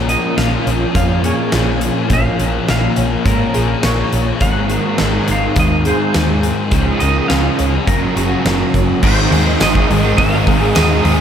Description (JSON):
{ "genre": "rock, shoegaze and dream pop", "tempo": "104 BPM", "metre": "4/4", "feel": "straight", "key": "Ab mixolydian", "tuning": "A4 = 439 Hz", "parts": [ { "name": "fingerpicked twelve-string acoustic guitar", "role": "arpeggios", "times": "0.0-11.2 s", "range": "Eb3 to Ab4", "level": "-24 LUFS", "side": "right 1 dB", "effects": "ensemble chorus, ping-pong delay" }, { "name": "crunchy overdriven guitar", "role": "riff", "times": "0.0-11.2 s", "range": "Gb2 to F4", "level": "-20 LUFS", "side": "right 7 dB", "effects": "reverse reverb" }, { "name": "thick fuzz guitar", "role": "riff", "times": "0.0-11.2 s", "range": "Gb2 to Db4", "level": "-19 LUFS", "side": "left 6 dB", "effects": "distortion, ensemble chorus" }, { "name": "hollow-body short-scale fingered electric bass", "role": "bass", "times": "0.0-11.2 s", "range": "Gb1 to Ab2", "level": "-18 LUFS", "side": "equal", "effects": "none" }, { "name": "clean electric guitar", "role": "melody", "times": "0.1-11.2 s", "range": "Bb4 to Gb5", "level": "-22 LUFS", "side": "equal", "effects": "tremolo, ping-pong delay" }, { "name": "huge arena drum kit", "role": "drums", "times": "0.1-11.2 s", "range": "crash cymbal, hi-hat, kick drum, snare drum", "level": "-20 LUFS", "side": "equal", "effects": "none" }, { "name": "sludgy distorted guitar", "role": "riff", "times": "9.0-11.2 s", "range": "Ab2 to Ab3", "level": "-20 LUFS", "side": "equal", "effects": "overdrive" }, { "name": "tambourine", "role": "percussion", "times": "9.6-10.9 s", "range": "none", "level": "-31 LUFS", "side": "right 8 dB", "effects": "none" } ], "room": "wet huge ambient reverb, RT60 8.5 s", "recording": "dreamy mix soaked in reverb", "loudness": "-12 LUFS", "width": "side -8 dB against mid", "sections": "0.0-9.0 A section; 9.0-11.2 B section", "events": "none", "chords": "0.0 Bbm7; 4.4 Abadd9; 6.7 Db6; 7.9 Gb; 9.0 Ab", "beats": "0.37 0.95 1.53 | 2.11 2.69 3.26 3.84 | 4.42 5.00 5.57 6.15 | 6.73 7.30 7.88 8.46 | 9.03 9.61 10.18 10.76" }